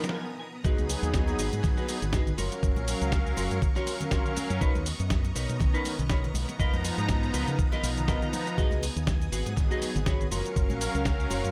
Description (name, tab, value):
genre	nu-disco, nu disco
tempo	121 BPM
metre	4/4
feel	swing 56% on 16ths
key	G# dorian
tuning	A4 = 440 Hz
part	warm analog pad	accompaniment	0.0-11.5 s	D#3 to A#5	-36 LUFS	equal	chorus, sidechain pumping, digital delay
part	string machine, full ensemble	sustained chords	0.0-11.5 s	B3 to D#6	-44 LUFS	equal	ensemble chorus, sidechain pumping
part	clean electric guitar	riff	0.0-11.5 s	D#4 to G#5	-38 LUFS	equal	analog chorus, digital delay
part	fingered electric bass with an envelope filter	bass	0.0-11.5 s	F#1 to C#3	-34 LUFS	equal	sidechain pumping, high-pass filter
part	dusty soul sampler-style drum kit	drums	0.0-11.5 s	hi-hat, shaker, snare drum	-38 LUFS	equal	none
part	electronic kick drum	drums	0.6-11.2 s	none	-30 LUFS	equal	none
part	congas	percussion	0.6-11.5 s	none	-41 LUFS	equal	none
room	digital ambience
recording	none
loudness	-28 LUFS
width	mono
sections	0.6-11.5 A section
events	clean electric guitar fill 0.0-0.6; break 0.1-0.6; drop 0.6-11.5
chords	0.0 C#13; 0.6 G#m7; 2.4 F#maj7; 4.6 Bmaj9; 6.6 C#13; 8.6 G#m7; 10.3 F#maj7